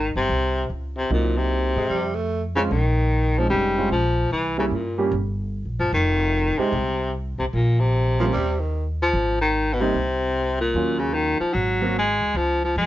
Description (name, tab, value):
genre	jazz, small-group swing and bop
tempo	149 BPM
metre	4/4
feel	swing 65% on 8ths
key	Ab major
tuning	A4 = 440 Hz
part	breathy baritone saxophone	melody	0.0-12.9 s	Bb2 to Ab3	-22 LUFS	left 2 dB	none
part	upright bass	bass	0.0-12.9 s	F1 to G2	-24 LUFS	equal	none
part	warm grand piano	accompaniment	1.1-11.9 s	Gb3 to G4	-25 LUFS	right 3 dB	none
part	growling tenor saxophone	second line	1.8-2.4, 8.2-8.9 s	Eb3 to A3	-27 LUFS	right 3 dB	none
room	light reverb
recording	nothing above 7.5 kHz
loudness	-20 LUFS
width	side -14 dB against mid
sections	0.0-12.4 A section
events	none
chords	0.0 Abmaj7 (rootless); 1.1 Cm7b5; 1.9 F5; 2.7 Bbm11; 4.3 C7(no3); 5.9 F7(no3); 7.5 Bbmadd9; 8.3 Eb; 9.1 Ab; 10.8 Ebm7; 11.6 Ab9; 12.4 Db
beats	0.29 0.69 | 1.09 1.49 1.90 2.30 | 2.70 3.10 3.50 3.91 | 4.31 4.71 5.11 5.52 | 5.92 6.32 6.72 7.13 | 7.53 7.93 8.33 8.74 | 9.14 9.54 9.95 10.35 | 10.75 11.15 11.55 11.96 | 12.36 12.76